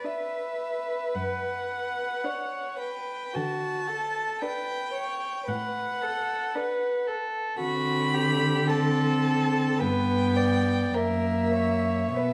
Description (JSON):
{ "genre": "classical, slow romantic movement for string quartet", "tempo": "49-58 BPM", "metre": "4/4", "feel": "rubato", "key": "unclear", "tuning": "A4 = 440 Hz", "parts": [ { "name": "rich violin", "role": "melody", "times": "0.0-12.3 s", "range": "E5 to B5", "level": "-34 LUFS", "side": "equal", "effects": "none" }, { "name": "dark violin", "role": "second line", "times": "0.0-12.3 s", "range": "F#4 to D5", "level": "-33 LUFS", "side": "equal", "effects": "none" }, { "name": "dark viola", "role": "accompaniment", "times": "0.0-12.3 s", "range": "A#3 to D4", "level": "-30 LUFS", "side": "equal", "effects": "none" }, { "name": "dark cello", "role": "bass", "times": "1.1-12.3 s", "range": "F#2 to D3", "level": "-31 LUFS", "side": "equal", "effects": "none" } ], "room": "wet recital hall reverb, RT60 1.4 s", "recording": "vinyl crackle", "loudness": "-27 LUFS", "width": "mono", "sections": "0.0-12.3 A section", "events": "none", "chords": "0.0 Bm; 3.3 D; 7.6 D5; 9.8 G; 10.9 F#7" }